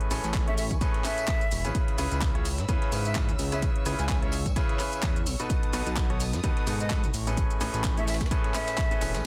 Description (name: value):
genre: piano house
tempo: 128 BPM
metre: 4/4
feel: swing 56% on 16ths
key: unclear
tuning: A4 = 440 Hz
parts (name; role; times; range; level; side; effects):
- dark studio violin section; sustained chords; 0.0-9.2 s; A3 to E6; -44 LUFS; equal; sidechain pumping
- bright grand piano; riff; 0.0-9.2 s; A2 to C#5; -35 LUFS; equal; sidechain pumping, dub echo
- garage drum kit; drums; 0.0-9.2 s; handclaps, hi-hat, shaker; -38 LUFS; equal; none
- fat analog bass; bass; 0.1-9.2 s; E1 to G#2; -33 LUFS; equal; sidechain pumping
- breakbeat sampler-style drum kit; drums; 0.1-9.2 s; hi-hat, snare drum; -47 LUFS; equal; none
- tambourine; percussion; 0.1-9.2 s; none; -46 LUFS; equal; none
- electronic kick drum; drums; 0.3-8.9 s; none; -31 LUFS; equal; none
- breathy bright jazz flute; melody; 0.5-9.2 s; D#5 to G#5; -37 LUFS; equal; dub echo
room: studio ambience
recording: dense, heavily limited modern master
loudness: -27 LUFS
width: mono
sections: 0.0-9.2 A section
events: drop 0.0-9.2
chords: 0.0 Amaj9; 1.7 C#m7; 5.5 B7; 7.1 Amaj9